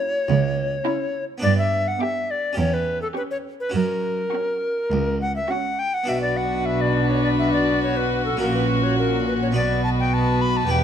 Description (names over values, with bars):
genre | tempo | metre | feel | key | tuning
classical, baroque-style concerto movement with solo episodes | 104 BPM | 4/4 | straight | B minor | A4 = 440 Hz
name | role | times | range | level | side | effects
bright tenor recorder | melody | 0.0-10.8 s | A4 to B5 | -24 LUFS | left 1 dB | none
rich chamber violin section | melody | 0.0-10.8 s | F#4 to D6 | -32 LUFS | left 4 dB | none
warm chamber violin section | second line | 0.0-10.8 s | E4 to G4 | -28 LUFS | left 2 dB | none
dark chamber viola section | accompaniment | 0.0-10.8 s | B3 to D4 | -28 LUFS | right 1 dB | none
harpsichord | accompaniment | 0.0-10.8 s | C#2 to B4 | -30 LUFS | equal | none
warm chamber cello section | bass | 0.3-10.8 s | C#2 to B2 | -25 LUFS | right 3 dB | none
rich chamber double bass section | bass | 6.1-10.8 s | E1 to B1 | -25 LUFS | right 2 dB | none
room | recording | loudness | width
light reverb | none | -20 LUFS | side -9 dB against mid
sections
0.0-6.1 A section; 6.1-10.8 A section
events
none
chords
0.0 F#7; 1.4 G; 2.6 C#dim/E; 3.7 F#; 6.1 Bm; 8.4 F#/A#; 9.6 B5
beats
0.28 0.85 | 1.43 2.00 2.57 3.15 | 3.74 4.33 4.91 5.50 | 6.08 6.67 7.25 7.82 | 8.40 8.98 9.55 10.13 | 10.70